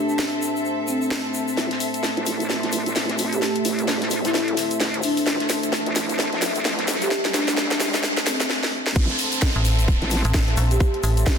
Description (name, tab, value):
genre	bass house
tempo	130 BPM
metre	4/4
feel	swing 60% on 16ths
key	A minor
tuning	A4 = 440 Hz
part	marimba with soft mallets	melody	0.0-10.9 s	C4 to G4	-27 LUFS	left 2 dB	vintage 12-bit sampler grit, ping-pong delay
part	deep dark ambient pad	sustained chords	0.0-11.4 s	A3 to A5	-30 LUFS	right 3 dB	chorus, built-in reverb, sidechain pumping
part	dark studio string section	texture	0.0-11.4 s	C4 to E5	-30 LUFS	left 1 dB	sidechain pumping
part	tube shaker	percussion	0.1-11.4 s	none	-34 LUFS	left 3 dB	none
part	garage drum kit	drums	0.2-11.4 s	crash cymbal, hi-hat, snare drum	-25 LUFS	equal	high-pass filter on snare, small room ambience, high-pass filter on hats, high-pass filter on cymbals
part	vowel-sweep wobble bass	bass	1.6-11.4 s	A1 to C2	-27 LUFS	equal	chorus, tube saturation, sidechain pumping, high-pass filter
part	modern studio drum kit	drums	1.6-11.4 s	hi-hat, snare drum	-32 LUFS	left 2 dB	none
part	riser and downlifter	sound effects	3.6-11.4 s	none	-32 LUFS	right 2 dB	none
part	electronic kick drum	drums	9.0-11.4 s	none	-20 LUFS	equal	small room ambience
part	metallic FM bass	bass	9.6-11.2 s	A1 to Bb1	-20 LUFS	equal	tube saturation, sidechain pumping
room	moderate lush hall reverb, RT60 1.7 s, small room ambience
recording	dense, heavily limited modern master, high-pass filter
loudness	-20 LUFS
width	side -7 dB against mid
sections	0.0-1.6 A section; 1.6-9.0 B section; 9.0-11.4 C section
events	build-up 1.6-9.0; drum fill 1.6-8.5, 8.5-9.0; riser 3.6-8.5; drop 9.0-11.4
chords	0.0 Am